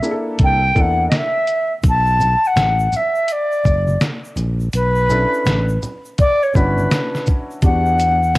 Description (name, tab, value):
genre	hip hop, jazz-hop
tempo	83 BPM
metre	4/4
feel	swing 64% on 16ths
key	B minor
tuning	A4 = 440 Hz
part	silver concert flute	melody	0.0-8.4 s	B4 to A5	-17 LUFS	equal	cassette tape
part	warm upright piano	accompaniment	0.0-8.2 s	A#3 to A4	-24 LUFS	left 1 dB	none
part	lo-fi sampler-style drum kit	drums	0.0-8.4 s	hi-hat, kick drum, shaker, snare drum	-17 LUFS	equal	none
part	sustaining fretless electric bass	bass	0.4-8.4 s	F#1 to E2	-19 LUFS	equal	none
part	tube shaker and congas	percussion	1.8-8.4 s	none	-30 LUFS	equal	none
room	light reverb, small room ambience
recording	home recording on cassette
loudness	-14 LUFS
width	side -19 dB against mid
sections	0.0-7.6 A section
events	none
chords	0.4 C13; 1.8 Bm11; 7.6 Em9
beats	0.40 1.12 | 1.84 2.57 3.29 4.01 | 4.73 5.46 6.18 6.90 | 7.63 8.35